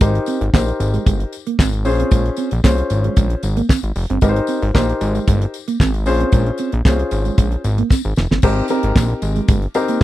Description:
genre	early-eighties boogie funk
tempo	114 BPM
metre	4/4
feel	straight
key	Ab major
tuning	A4 = 440 Hz
part	dark baby grand piano	accompaniment	0.0-10.0 s	C4 to C5	-21 LUFS	left 3 dB	none
part	mellow electric guitar	riff	0.0-10.0 s	Ab3 to C4	-22 LUFS	right 6 dB	wide subtle chorus
part	fat analog bass	bass	0.0-10.0 s	F1 to C2	-18 LUFS	equal	none
part	damped 70s drum kit	drums	0.0-10.0 s	crash cymbal, handclaps, hi-hat, kick drum, snare drum	-14 LUFS	equal	none
part	tambourine	percussion	0.0-10.0 s	none	-36 LUFS	left 24 dB	none
room	little or no reverb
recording	dry, close 1970s-style studio recording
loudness	-15 LUFS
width	side -15 dB against mid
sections	0.0-8.4 A section; 8.4-10.0 B section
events	drum fill 7.9-8.4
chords	0.0 Abmaj9; 1.9 Bbm9; 4.2 Abmaj9; 6.1 Bbm9; 8.4 Abmaj9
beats	| 0.01 0.54 1.06 1.59 | 2.12 2.64 3.17 3.70 | 4.22 4.75 5.28 5.80 | 6.33 6.85 7.38 7.91 | 8.43 8.96 9.48 10.01

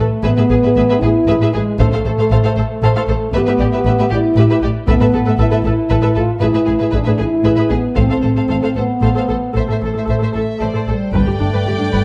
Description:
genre	cinematic, epic orchestral film score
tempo	77 BPM (dotted quarters)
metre	6/8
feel	straight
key	A minor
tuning	A4 = 440 Hz
part	rich symphonic violin section	melody	0.0-12.0 s	B4 to G5	-30 LUFS	equal	none
part	clear symphonic violin section	second line	0.0-12.0 s	G4 to D5	-27 LUFS	equal	none
part	warm symphonic viola section	accompaniment	0.0-12.0 s	D4 to B4	-26 LUFS	equal	none
part	mellow French horn section	sustained chords	0.0-12.0 s	G3 to F4	-20 LUFS	equal	none
part	dark symphonic cello section	bass	0.0-12.0 s	G2 to A2	-21 LUFS	equal	none
part	rich symphonic double bass section	bass	0.0-12.0 s	G1 to A1	-22 LUFS	equal	none
part	taiko ensemble	drums	1.8-12.0 s	none	-23 LUFS	equal	none
room	wet recital hall reverb, RT60 1.5 s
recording	dark, warm production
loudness	-15 LUFS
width	mono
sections	0.0-11.1 A section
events	none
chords	0.2 E/A; 1.8 F/A (rootless); 3.3 G6/A; 4.9 Asus2; 6.4 E/A; 8.0 F/A (rootless); 9.6 Am; 11.1 G5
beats	| 0.24 1.02 | 1.79 2.56 | 3.34 4.11 | 4.87 5.64 | 6.42 7.19 | 7.97 8.76 | 9.55 10.35 | 11.14 11.92

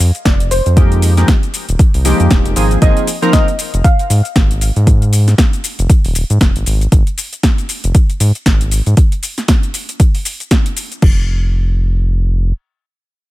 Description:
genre	deep house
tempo	117 BPM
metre	4/4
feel	swing 58% on 16ths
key	unclear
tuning	A4 = 442 Hz
part	soft round pluck	melody	0.0-4.6 s	C5 to F5	-21 LUFS	equal	lush chorus, ping-pong delay
part	round analog bass	bass	0.0-12.5 s	Eb1 to Ab2	-13 LUFS	equal	sidechain pumping
part	deep house drum kit	drums	0.0-11.1 s	crash cymbal, hi-hat, shaker, snare drum	-19 LUFS	equal	overdrive
part	electronic kick drum	drums	0.3-11.1 s	none	-11 LUFS	equal	overdrive
part	warm analog keys	stabs	0.8-3.5 s	F3 to Bb4	-16 LUFS	equal	chorus, sidechain pumping, ping-pong delay
room	little or no reverb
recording	none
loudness	-10 LUFS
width	side -17 dB against mid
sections	0.0-11.0 A section; 11.0-13.3 B section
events	drop 0.0-11.0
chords	0.0 Fm11; 2.6 Absus2; 11.0 N.C.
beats	0.25 | 0.77 1.28 1.79 2.31 | 2.82 3.33 3.84 4.36 | 4.87 5.38 5.90 6.41 | 6.92 7.43 7.95 8.46 | 8.97 9.48 10.00 10.51 | 11.02 11.54 12.05

